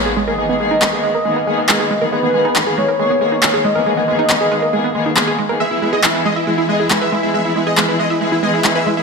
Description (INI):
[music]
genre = uplifting trance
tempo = 138 BPM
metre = 4/4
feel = straight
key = G# minor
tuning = A4 = 441 Hz
[part]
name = warm velvety synth lead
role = second line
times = 0.0-5.5 s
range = B4 to D#5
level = -18 LUFS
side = left 1 dB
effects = chorus, digital delay
[part]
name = dark studio string section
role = sustained chords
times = 0.0-9.0 s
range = D#3 to G#4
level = -20 LUFS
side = left 2 dB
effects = none
[part]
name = wide unison pluck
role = arpeggios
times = 0.0-9.0 s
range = G#3 to E5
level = -20 LUFS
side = right 3 dB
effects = digital delay
[part]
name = electronic handclaps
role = drums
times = 0.8-8.7 s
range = none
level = -18 LUFS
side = equal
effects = none
[part]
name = dense compressed supersaw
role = melody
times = 5.6-9.0 s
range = E4 to E5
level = -18 LUFS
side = equal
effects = none
[sound]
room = wet lush hall reverb, RT60 1.8 s, digital ambience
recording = none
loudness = -13 LUFS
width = side -4 dB against mid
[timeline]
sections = 0.0-9.0 A section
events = filter sweep on synth arpeggio sound 0.0-9.0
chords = 0.0 G#madd9; 5.6 E